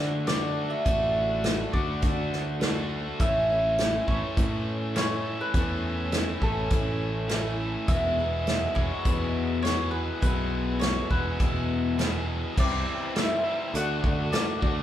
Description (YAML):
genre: folk rock and heartland rock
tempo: 102 BPM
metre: 4/4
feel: straight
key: A major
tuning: A4 = 441 Hz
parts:
  - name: mandolin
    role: melody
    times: 0.0-14.8 s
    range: A4 to F#5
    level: -30 LUFS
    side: equal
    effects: none
  - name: picked twelve-string acoustic guitar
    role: accompaniment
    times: 0.0-14.8 s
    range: E2 to F#4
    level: -35 LUFS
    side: left 6 dB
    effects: none
  - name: raw garage guitar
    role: riff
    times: 0.0-14.8 s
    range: E2 to F#4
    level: -32 LUFS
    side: right 1 dB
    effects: overdrive
  - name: picked electric bass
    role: bass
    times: 0.0-14.8 s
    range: E1 to D3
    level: -31 LUFS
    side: equal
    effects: none
  - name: unplugged drum kit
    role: drums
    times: 0.3-14.8 s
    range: crash cymbal, hi-hat, kick drum, snare drum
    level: -28 LUFS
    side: equal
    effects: none
  - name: bright upright piano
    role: accompaniment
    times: 12.6-14.8 s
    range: F#4 to E5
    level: -43 LUFS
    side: right 4 dB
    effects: none
  - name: mellow tonewheel organ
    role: sustained chords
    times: 12.6-14.8 s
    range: A4 to E6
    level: -39 LUFS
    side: equal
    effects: none
room: moderate large studio reverb, RT60 1.1 s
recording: band playing live in one room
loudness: -24 LUFS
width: side -11 dB against mid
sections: 0.0-12.6 A section; 12.6-14.8 B section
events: none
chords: 0.0 D; 3.2 A; 7.9 E; 12.6 C; 13.7 D